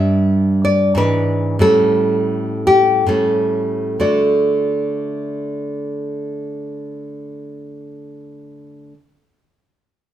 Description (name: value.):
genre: romantic piece for solo classical guitar.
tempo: 62-101 BPM.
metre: 3/4.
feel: rubato.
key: D major.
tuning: A4 = 436 Hz.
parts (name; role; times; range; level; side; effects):
nylon-string guitar; solo; 0.0-8.9 s; G2 to E5; -16 LUFS; equal; none.
room: moderate large studio reverb, RT60 0.9 s.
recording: band playing live in one room.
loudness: -15 LUFS.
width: side -11 dB against mid.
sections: 0.0-4.0 A section; 4.0-9.4 B section.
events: slowing down 0.0-4.0.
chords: 0.0 G5; 1.0 E7/G#; 1.6 A7; 4.0 D.